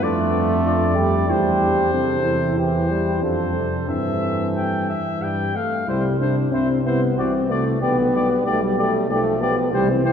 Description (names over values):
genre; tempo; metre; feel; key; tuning
classical, brass quintet; 93 BPM; 3/4; rubato; C major; A4 = 442 Hz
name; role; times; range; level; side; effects
clear trumpet; melody; 0.0-10.1 s; C5 to G5; -26 LUFS; left 3 dB; none
mellow flugelhorn; second line; 0.0-10.1 s; E4 to A4; -27 LUFS; right 4 dB; none
warm French horn; accompaniment; 0.0-10.1 s; G3 to E4; -23 LUFS; left 2 dB; none
warm trombone; accompaniment; 0.0-10.1 s; C3 to A3; -25 LUFS; right 1 dB; none
mellow tuba; bass; 0.0-10.1 s; B1 to G2; -24 LUFS; right 1 dB; none
room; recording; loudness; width
wet church reverb, RT60 3.5 s; recorded in a church or concert hall; -18 LUFS; side -7 dB against mid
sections
0.0-5.9 A section; 5.9-10.1 B section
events
none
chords
0.0 G5/F; 1.3 C/E; 3.2 F; 3.9 C/G; 5.2 Fmaj9/G; 5.9 C; 7.2 D7/C; 7.8 G/B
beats
| 0.02 0.65 1.29 | 1.94 2.58 3.23 | 3.89 4.56 5.22 | 5.88 6.54 7.19 | 7.83 8.47 9.11 | 9.73